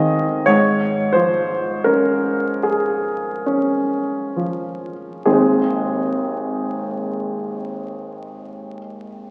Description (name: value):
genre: classical, romantic nocturne for solo piano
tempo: 31-49 BPM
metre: 3/4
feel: rubato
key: Ab major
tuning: A4 = 440 Hz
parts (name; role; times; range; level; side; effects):
- warm grand piano; solo; 0.0-9.3 s; Ab1 to F5; -20 LUFS; equal; none
room: wet concert hall reverb, RT60 2.4 s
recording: very old 78 rpm record, vinyl crackle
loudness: -20 LUFS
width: mono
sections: 0.0-5.3 A section; 5.3-9.3 B section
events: slowing down 0.0-5.3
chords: 0.5 Db/Ab; 5.3 Ab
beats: | 0.48 1.87 3.46 | 5.27 7.00 8.71